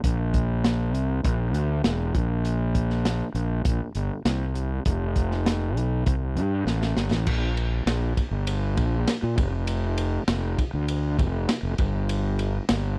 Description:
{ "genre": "psychedelic rock", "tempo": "100 BPM", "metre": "4/4", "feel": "straight", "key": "G dorian", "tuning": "A4 = 441 Hz", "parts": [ { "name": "fuzz fingered electric bass", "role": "bass", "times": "0.0-13.0 s", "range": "E1 to Bb2", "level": "-27 LUFS", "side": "equal", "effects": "overdrive" }, { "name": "crunchy breakbeat drum kit", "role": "drums", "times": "0.0-12.8 s", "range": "crash cymbal, hi-hat, kick drum, ride cymbal, snare drum", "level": "-29 LUFS", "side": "equal", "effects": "none" } ], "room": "little or no reverb", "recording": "dry, close 1970s-style studio recording", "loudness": "-25 LUFS", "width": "mono", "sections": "0.0-7.3 A section; 7.3-13.0 B section", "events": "drum fill 6.7-7.3", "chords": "none", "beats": "| 0.03 0.64 1.24 1.84 | 2.45 3.05 3.65 4.26 | 4.86 5.46 6.07 6.67 | 7.27 7.87 8.48 9.08 | 9.68 10.28 10.88 11.49 | 12.09 12.69" }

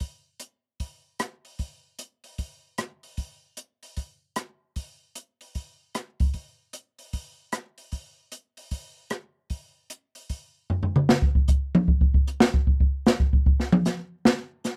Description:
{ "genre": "jazz", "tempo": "152 BPM", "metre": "4/4", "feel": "swing 64% on 8ths", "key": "none", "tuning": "none", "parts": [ { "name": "open jazz drum kit", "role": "drums", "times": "0.0-14.8 s", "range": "hi-hat, kick drum, rim click, snare drum, toms", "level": "-23 LUFS", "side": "equal", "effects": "none" } ], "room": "light reverb", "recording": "dry, close 1970s-style studio recording", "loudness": "-24 LUFS", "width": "mono", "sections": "0.0-11.1 A section; 11.1-14.8 B section", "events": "drum fill 10.7-11.1; drum solo 11.1-14.8", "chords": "none", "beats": "| 0.01 0.41 0.80 1.20 | 1.60 1.99 2.39 2.79 | 3.18 3.58 3.97 4.37 | 4.76 5.16 5.55 5.95 | 6.35 6.74 7.14 7.53 | 7.93 8.32 8.72 9.12 | 9.51 9.91 10.30 10.70 | 11.09 11.49 11.88 12.28 | 12.68 13.07 13.47 13.86 | 14.26 14.65" }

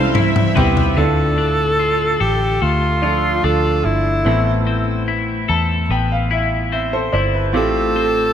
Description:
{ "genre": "pop ballad", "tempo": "73 BPM", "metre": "4/4", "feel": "straight", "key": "unclear", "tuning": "A4 = 440 Hz", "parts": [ { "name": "bright alto saxophone", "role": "melody", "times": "0.0-8.3 s", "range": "E4 to C5", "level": "-19 LUFS", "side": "equal", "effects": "digital delay" }, { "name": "rich studio violin section", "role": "second line", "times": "0.0-1.0 s", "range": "E5 to F5", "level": "-27 LUFS", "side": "equal", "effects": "none" }, { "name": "bright grand piano", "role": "accompaniment", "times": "0.0-8.3 s", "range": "A2 to A5", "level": "-21 LUFS", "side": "right 3 dB", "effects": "lush chorus" }, { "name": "twelve-string electric guitar", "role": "arpeggios", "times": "0.0-8.3 s", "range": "A2 to B4", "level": "-22 LUFS", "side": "left 6 dB", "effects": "none" }, { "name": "vintage muted fingered electric bass", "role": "bass", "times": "0.0-8.3 s", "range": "G1 to E2", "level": "-20 LUFS", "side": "equal", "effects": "none" }, { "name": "toms", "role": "drums", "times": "0.1-1.0 s", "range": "none", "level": "-18 LUFS", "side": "left 2 dB", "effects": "gated reverb" } ], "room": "moderate lush hall reverb, RT60 2.8 s", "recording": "bright 1980s-style digital production", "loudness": "-15 LUFS", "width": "side -9 dB against mid", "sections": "1.0-8.3 A section", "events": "drum fill 0.0-1.0; grand piano fill 5.1-7.6", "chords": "0.0 Cmaj7; 1.0 Dm; 4.3 Amadd9; 7.6 Fadd9/A", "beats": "0.15 | 0.98 1.80 2.62 3.44 | 4.26 5.09 5.91 6.73 | 7.55" }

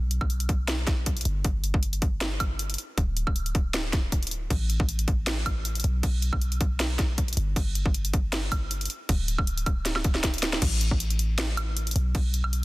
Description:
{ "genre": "future bass", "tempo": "157 BPM", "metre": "4/4", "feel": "swing 54% on 16ths, half-time", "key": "unclear", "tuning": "A4 = 439 Hz", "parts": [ { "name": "warm 808-style bass", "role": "bass", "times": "0.0-12.6 s", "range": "D1 to B1", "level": "-28 LUFS", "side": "equal", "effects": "sidechain pumping" }, { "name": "trap drum kit", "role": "drums", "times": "0.1-12.6 s", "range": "crash cymbal, hi-hat, snare drum, woodblock", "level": "-30 LUFS", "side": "equal", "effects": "overdrive" }, { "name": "electronic kick drum", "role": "drums", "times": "0.2-12.2 s", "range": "none", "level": "-26 LUFS", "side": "equal", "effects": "overdrive" } ], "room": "little or no reverb", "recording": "dense, heavily limited modern master", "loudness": "-24 LUFS", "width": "side -20 dB against mid", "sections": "0.0-10.6 A section; 10.6-12.6 A section", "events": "drop 0.0-10.6, 10.6-12.6; drum fill 9.9-10.6", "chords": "none", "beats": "0.30 0.68 1.06 | 1.45 1.83 2.21 2.59 | 2.98 3.36 3.74 4.12 | 4.50 4.89 5.27 5.65 | 6.03 6.42 6.80 7.18 | 7.56 7.94 8.33 8.71 | 9.09 9.47 9.86 10.24 | 10.62 11.00 11.38 11.77 | 12.15 12.53" }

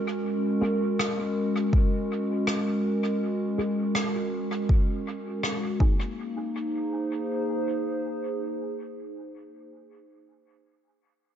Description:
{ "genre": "ambient dub", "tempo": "81 BPM", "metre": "4/4", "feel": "swing 58% on 16ths", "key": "Ab mixolydian", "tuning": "A4 = 439 Hz", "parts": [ { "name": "warbly tape-like pad", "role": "sustained chords", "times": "0.0-9.9 s", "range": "Ab3 to C5", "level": "-27 LUFS", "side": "equal", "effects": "chorus, built-in reverb" }, { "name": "filtered dub chord stab", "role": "stabs", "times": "0.6-9.7 s", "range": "Bb3 to Ab4", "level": "-37 LUFS", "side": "right 1 dB", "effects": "phaser, ensemble chorus, dub echo" }, { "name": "rim click", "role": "drums", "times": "1.0-5.6 s", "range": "none", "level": "-34 LUFS", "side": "equal", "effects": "dub echo" }, { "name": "electronic kick drum", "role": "drums", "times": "1.7-6.0 s", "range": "none", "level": "-22 LUFS", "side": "equal", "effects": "none" } ], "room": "light reverb, studio reverb", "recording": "nothing above 7.7 kHz", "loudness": "-25 LUFS", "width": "side -9 dB against mid", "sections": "0.0-6.2 A section; 6.2-9.1 B section", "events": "filter sweep on synth stab 0.0-6.2", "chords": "0.2 Gbadd9; 5.8 Ab", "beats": "| 0.24 0.99 1.73 2.47 | 3.21 3.95 4.69 5.43 | 6.17 6.91 7.65 8.39" }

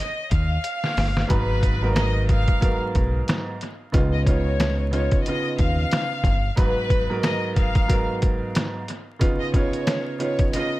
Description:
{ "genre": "hip hop, boom-bap hip-hop", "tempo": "91 BPM", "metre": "4/4", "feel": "swing 57% on 16ths", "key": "G# dorian", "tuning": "A4 = 440 Hz", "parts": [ { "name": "warm chamber violin section", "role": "melody", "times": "0.0-10.8 s", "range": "B4 to E#5", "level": "-28 LUFS", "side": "left 1 dB", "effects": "dub echo" }, { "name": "deep dub fingered electric bass", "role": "bass", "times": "0.3-6.5 s", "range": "G1 to D#2", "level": "-23 LUFS", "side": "equal", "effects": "none" }, { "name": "trip hop sampler-style drum kit", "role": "drums", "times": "0.3-10.7 s", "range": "hi-hat, kick drum, snare drum", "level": "-22 LUFS", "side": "equal", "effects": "none" }, { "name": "warm grand piano", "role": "accompaniment", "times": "1.3-10.8 s", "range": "G#2 to B4", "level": "-26 LUFS", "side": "right 2 dB", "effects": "cassette tape" } ], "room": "studio reverb", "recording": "echo-heavy mix, vinyl crackle", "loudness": "-20 LUFS", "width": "side -17 dB against mid", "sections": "0.0-10.8 A section", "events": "break 0.0-1.3; drum fill 0.6-1.3", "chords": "0.0 C#add9 (rootless); 1.3 G#m9; 3.9 C#9; 6.6 G#m9; 9.2 C#9", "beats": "0.64 | 1.30 1.96 2.62 3.28 | 3.94 4.60 5.26 5.92 | 6.58 7.24 7.89 8.55 | 9.21 9.87 10.53" }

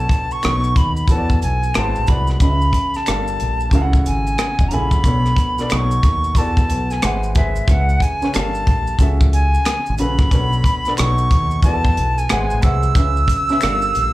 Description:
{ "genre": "R&B, neo-soul", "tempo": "91 BPM", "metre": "4/4", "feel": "swing 64% on 16ths", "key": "F# minor", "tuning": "A4 = 440 Hz", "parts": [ { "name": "bright reedy silver concert flute", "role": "melody", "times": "0.0-14.1 s", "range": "E5 to E6", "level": "-21 LUFS", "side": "equal", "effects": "slapback echo" }, { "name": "warm baby grand piano", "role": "accompaniment", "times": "0.0-14.1 s", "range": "B2 to G#5", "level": "-24 LUFS", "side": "equal", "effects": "slapback echo" }, { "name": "deep dub fingered electric bass", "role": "bass", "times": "0.0-14.1 s", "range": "E1 to E2", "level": "-19 LUFS", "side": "equal", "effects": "none" }, { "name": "tight funk drum kit", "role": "drums", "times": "0.1-14.1 s", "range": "hi-hat, kick drum, rim click", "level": "-17 LUFS", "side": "equal", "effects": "none" }, { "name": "maracas and finger snaps", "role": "percussion", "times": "0.3-14.1 s", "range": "none", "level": "-36 LUFS", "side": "equal", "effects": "slapback echo" } ], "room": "little or no reverb", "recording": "live gig heard through the venue's PA, club reverb", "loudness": "-14 LUFS", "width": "side -17 dB against mid", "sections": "0.0-5.0 A section; 5.0-14.1 B section", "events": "none", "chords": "0.4 B9; 1.1 E7sus4; 1.7 G#7alt; 2.4 C#m7; 3.1 Gm9; 3.7 F#m9; 5.0 Bm9; 5.7 B9; 6.4 E7sus4; 7.0 G#7alt; 7.7 C#m7; 8.3 Gm9; 9.0 F#m9/C#; 10.3 Bm9; 11.0 B9; 11.6 E7sus4; 12.3 G#7alt; 13.0 C#m7; 13.6 Gm9", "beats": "0.42 1.08 1.74 | 2.40 3.06 3.72 4.38 | 5.04 5.70 6.36 7.02 | 7.68 8.34 9.00 9.65 | 10.31 10.97 11.63 12.29 | 12.95 13.61" }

